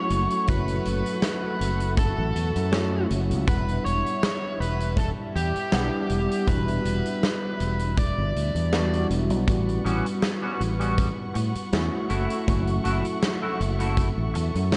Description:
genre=vaporwave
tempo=80 BPM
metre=4/4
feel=straight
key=E dorian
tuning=A4 = 440 Hz
part: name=smooth overdriven lead guitar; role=melody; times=0.0-9.1 s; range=G4 to D5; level=-32 LUFS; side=equal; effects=tape echo
part: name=tine electric piano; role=accompaniment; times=0.0-14.8 s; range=F#3 to F#5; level=-32 LUFS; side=equal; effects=analog chorus, vintage 12-bit sampler grit, analog delay
part: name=dark studio string section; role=sustained chords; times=0.0-14.8 s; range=G3 to C#6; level=-39 LUFS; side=equal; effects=vintage 12-bit sampler grit
part: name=fingered electric bass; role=bass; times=0.1-14.8 s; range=E1 to A2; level=-28 LUFS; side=equal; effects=tube saturation
part: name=huge arena drum kit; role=drums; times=0.1-14.8 s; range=hi-hat, snare drum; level=-33 LUFS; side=equal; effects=none
part: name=kick drum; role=drums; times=0.5-14.1 s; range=none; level=-31 LUFS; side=equal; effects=none
part: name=clean electric guitar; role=riff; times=9.8-14.6 s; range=G3 to F#4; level=-33 LUFS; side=equal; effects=analog chorus, analog delay
room=light reverb, studio reverb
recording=nothing above 10.3 kHz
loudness=-25 LUFS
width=mono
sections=0.0-14.8 A section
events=none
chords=0.1 F#m7; 3.5 Em9; 9.5 A13; 12.1 F#m7

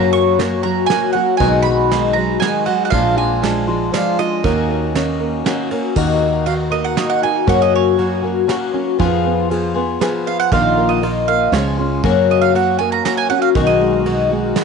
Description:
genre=acoustic folk duo or small band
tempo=118 BPM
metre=3/4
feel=straight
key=Eb minor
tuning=A4 = 439 Hz
part: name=mandolin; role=second line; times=0.0-14.1 s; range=Db5 to Db6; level=-20 LUFS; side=right 12 dB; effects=tape echo
part: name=fingerpicked plugged-in twelve-string acoustic guitar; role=accompaniment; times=0.0-14.6 s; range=Gb2 to Ab4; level=-17 LUFS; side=left 11 dB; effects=none
part: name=warm upright piano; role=arpeggios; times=0.0-14.6 s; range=Eb3 to Ab4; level=-22 LUFS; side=right 11 dB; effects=none
part: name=woody fretless electric bass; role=bass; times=0.0-14.5 s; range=Bb1 to Gb2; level=-21 LUFS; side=right 1 dB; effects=none
part: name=soft brush drum kit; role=drums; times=0.4-14.6 s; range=crash cymbal, kick drum, ride cymbal, snare drum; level=-26 LUFS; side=right 4 dB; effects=none
room=light reverb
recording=1960s-style stereo with parts hard left and right, nothing above 10.8 kHz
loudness=-14 LUFS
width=side -5 dB against mid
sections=0.0-6.0 A section; 6.0-14.6 B section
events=mandolin solo 0.0-6.0, 6.0-14.6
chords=0.0 Gb; 1.4 B6; 2.9 Bb7; 4.4 Ebm7; 6.0 Ebm; 7.5 Gb; 9.0 Fdim; 10.5 Bbsus4; 11.5 Db; 12.0 Gb; 13.5 B6

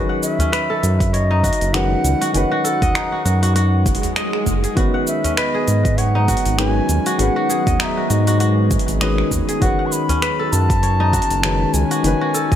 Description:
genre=organic downtempo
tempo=99 BPM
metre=4/4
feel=swing 57% on 16ths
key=F# dorian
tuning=A4 = 440 Hz
part: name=felt-muted upright piano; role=accompaniment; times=0.0-12.6 s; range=D#3 to B4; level=-24 LUFS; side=left 3 dB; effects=sidechain pumping, ping-pong delay
part: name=kora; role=arpeggios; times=0.0-12.6 s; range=C#4 to F#5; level=-24 LUFS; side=left 2 dB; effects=ping-pong delay
part: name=round analog bass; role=bass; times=0.0-12.1 s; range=F#1 to G#2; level=-18 LUFS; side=equal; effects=sidechain pumping
part: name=bronze singing bowl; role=texture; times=0.0-12.6 s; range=F#3 to B4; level=-31 LUFS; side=right 6 dB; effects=none
part: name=bright reedy bansuri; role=melody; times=0.2-12.6 s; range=D#5 to C#6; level=-24 LUFS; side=right 1 dB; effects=digital delay
part: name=afro-pop drum kit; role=drums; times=0.2-12.6 s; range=cabasa, finger snaps, hi-hat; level=-25 LUFS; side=right 1 dB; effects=overdrive
part: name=udu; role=percussion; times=0.4-12.6 s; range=none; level=-22 LUFS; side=equal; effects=none
part: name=electronic kick drum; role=drums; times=1.0-12.6 s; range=none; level=-21 LUFS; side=equal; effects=overdrive
part: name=swell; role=sound effects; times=3.8-4.8 s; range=none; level=-26 LUFS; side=right 2 dB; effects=none
part: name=bowed-like drone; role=sustained chords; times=6.1-12.6 s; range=D#3 to G#4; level=-26 LUFS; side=left 1 dB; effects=built-in reverb, sidechain pumping
room=light reverb, small room ambience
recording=faint mains hum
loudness=-15 LUFS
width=side -10 dB against mid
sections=0.0-12.6 A section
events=swell 3.8-4.8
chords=0.0 F#m69; 4.8 G#m7; 9.6 F#m69

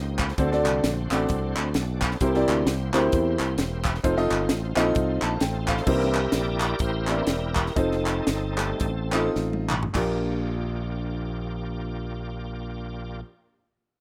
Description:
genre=uptempo gospel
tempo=98-131 BPM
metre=4/4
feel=swing 59% on 8ths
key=Bb major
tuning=A4 = 441 Hz
part: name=bright tonewheel organ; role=sustained chords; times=0.0-13.2 s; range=E3 to Eb5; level=-35 LUFS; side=equal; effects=slow rotary speaker, overdrive, chorus vibrato
part: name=modern bright fingered electric bass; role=bass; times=0.0-13.2 s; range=E1 to E2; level=-31 LUFS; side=equal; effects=none
part: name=tight funk drum kit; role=drums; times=0.2-10.1 s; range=crash cymbal, hi-hat, kick drum, snare drum, toms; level=-31 LUFS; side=equal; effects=none
part: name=group handclap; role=percussion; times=0.2-10.3 s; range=none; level=-31 LUFS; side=equal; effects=none
part: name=clear baby grand piano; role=accompaniment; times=0.4-13.2 s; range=Bb1 to A5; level=-28 LUFS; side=equal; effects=none
room=small room ambience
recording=rough home demo mix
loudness=-25 LUFS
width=mono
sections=0.0-5.9 A section; 5.9-9.9 B section; 9.9-14.0 C section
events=grand piano fill 5.0-5.9; slowing down 5.9-9.9; tonewheel organ solo 5.9-9.9; drum fill 9.4-9.9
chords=0.4 D7; 2.2 C7; 4.0 F7; 5.9 C7; 7.8 F7; 9.9 Bb6

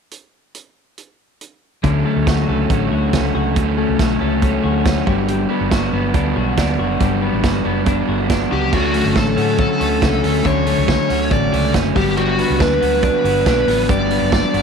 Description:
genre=jangly indie pop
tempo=139 BPM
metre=4/4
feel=straight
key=D major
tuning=A4 = 437 Hz
part: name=vintage drum kit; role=drums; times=0.1-14.6 s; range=crash cymbal, hi-hat, kick drum, snare drum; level=-21 LUFS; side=right 2 dB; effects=none
part: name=crunchy overdriven guitar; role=accompaniment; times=1.8-14.6 s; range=G2 to D4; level=-21 LUFS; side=right 14 dB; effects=none
part: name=twelve-string electric guitar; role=arpeggios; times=1.8-14.6 s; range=D3 to F#4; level=-20 LUFS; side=left 13 dB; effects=none
part: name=vintage muted fingered electric bass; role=bass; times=1.8-14.6 s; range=F#1 to A2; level=-22 LUFS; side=equal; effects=none
part: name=bluesy overdriven lead guitar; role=melody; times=8.5-14.6 s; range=F#4 to D5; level=-19 LUFS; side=left 1 dB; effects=distortion
room=light reverb, small room ambience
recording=1960s-style stereo with parts hard left and right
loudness=-14 LUFS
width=side -6 dB against mid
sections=0.1-1.8 A section; 1.8-8.7 B section; 8.7-14.6 C section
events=none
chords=0.1 N.C.; 1.8 Dmaj7; 5.1 Gmaj7; 8.7 Dmaj7; 12.0 Gmaj7

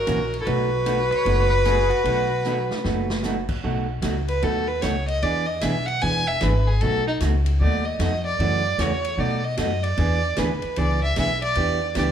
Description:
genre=country, western swing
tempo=151 BPM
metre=4/4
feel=swing 65% on 8ths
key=B mixolydian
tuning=A4 = 442 Hz
part: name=dark fiddle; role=melody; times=0.0-12.1 s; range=D#4 to G#5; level=-24 LUFS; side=equal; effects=slapback echo
part: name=growling clarinet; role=second line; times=0.0-3.2 s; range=E4 to F#4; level=-32 LUFS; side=right 5 dB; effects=slapback echo
part: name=vintage hollow-body jazz guitar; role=accompaniment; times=0.1-12.1 s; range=B2 to G#4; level=-27 LUFS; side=right 3 dB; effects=slapback echo
part: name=upright bass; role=bass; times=0.1-12.1 s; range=E1 to B2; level=-24 LUFS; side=left 1 dB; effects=none
part: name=swinging big-band drum kit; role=drums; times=0.1-12.1 s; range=crash cymbal, hi-hat, kick drum, ride cymbal, snare drum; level=-34 LUFS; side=equal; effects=none
part: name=pedal steel guitar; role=second line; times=1.1-2.8 s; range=F#4 to C#5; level=-31 LUFS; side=left 5 dB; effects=slapback echo
room=little or no reverb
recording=live gig heard through the venue's PA, club reverb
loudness=-20 LUFS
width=side -9 dB against mid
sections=0.0-3.6 A section; 3.6-12.1 B section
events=drum fill 2.4-3.2; fiddle solo 3.6-12.1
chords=0.5 B7; 3.6 B9; 5.2 E7; 6.8 B9; 8.4 F#m7; 9.2 B7; 10.0 E7; 11.6 Em7

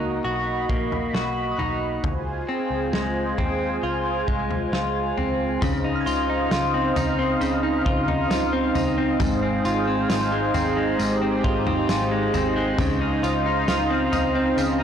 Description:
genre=dream pop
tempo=67 BPM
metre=4/4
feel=straight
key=Db major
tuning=A4 = 440 Hz
part: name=warm analog pad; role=sustained chords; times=0.0-14.8 s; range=Eb4 to Cb6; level=-26 LUFS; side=right 2 dB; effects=chorus
part: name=clean electric guitar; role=arpeggios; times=0.0-14.8 s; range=Ab2 to Gb4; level=-23 LUFS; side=left 1 dB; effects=wide subtle chorus, slapback echo
part: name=vintage muted picked electric bass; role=bass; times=0.0-14.8 s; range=Ab1 to Eb2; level=-30 LUFS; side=equal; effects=none
part: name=soft synth bell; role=texture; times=0.0-12.8 s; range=Eb6 to Bb6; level=-39 LUFS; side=right 4 dB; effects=none
part: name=loose indie drum kit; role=drums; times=0.7-14.8 s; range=kick drum, snare drum, tambourine, toms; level=-28 LUFS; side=equal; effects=none
room=moderate plate reverb, RT60 3.3 s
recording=blown-out, overdriven recording, overdrive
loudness=-20 LUFS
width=side -8 dB against mid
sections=0.0-5.6 A section; 5.6-14.8 B section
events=none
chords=0.0 Cbmaj7; 2.0 Dbmaj7; 5.6 Dbmaj9; 9.2 Ab6; 12.8 Dbmaj9

